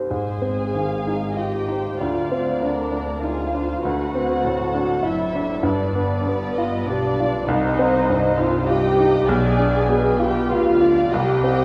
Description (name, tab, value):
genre	classical, romantic movement for piano and orchestra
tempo	98 BPM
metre	3/4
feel	rubato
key	C minor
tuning	A4 = 435 Hz
part	clear baby grand piano	melody	0.0-11.6 s	B1 to C5	-24 LUFS	equal	none
part	muted symphonic violin section	melody	0.1-11.6 s	Ab4 to F5	-32 LUFS	equal	none
part	muted symphonic violin section	second line	0.1-11.6 s	B4 to Ab5	-31 LUFS	equal	none
part	muted symphonic viola section	accompaniment	0.1-11.6 s	B3 to Ab4	-25 LUFS	equal	none
part	muted symphonic cello section	bass	0.1-11.6 s	D2 to D3	-33 LUFS	equal	none
part	muted symphonic double bass section	bass	0.1-11.6 s	F#1 to D2	-33 LUFS	equal	none
part	timpani	percussion	7.5-11.6 s	C3	-35 LUFS	equal	none
room	wet scoring stage reverb, RT60 1.8 s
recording	heard from further back in the room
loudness	-21 LUFS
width	mono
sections	0.1-11.6 A section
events	none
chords	0.1 Ab; 2.0 Dm7; 3.8 D7; 5.7 G7; 7.5 Cm; 9.3 Bdim7; 11.1 Cm